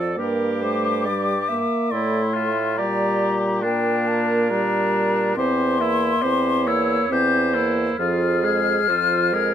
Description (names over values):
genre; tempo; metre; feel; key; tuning
classical, slow romantic movement for wind quintet; 69 BPM; 3/4; rubato; unclear; A4 = 441 Hz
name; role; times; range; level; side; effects
clear oboe; second line; 0.0-9.5 s; D4 to A4; -27 LUFS; left 3 dB; none
bright clarinet; accompaniment; 0.0-9.5 s; Ab4 to E5; -27 LUFS; right 8 dB; none
warm French horn; accompaniment; 0.0-9.5 s; F3 to C4; -25 LUFS; equal; none
mellow bassoon; bass; 0.0-9.5 s; E2 to Bb2; -25 LUFS; right 2 dB; none
mellow hollow silver concert flute; melody; 0.2-9.5 s; G5 to G6; -24 LUFS; left 7 dB; none
room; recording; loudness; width
light reverb; close, detailed microphones; -18 LUFS; side -9 dB against mid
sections
0.0-9.5 A section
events
none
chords
0.2 Gm; 2.8 Gm/Bb; 5.4 C7/E; 8.0 Fm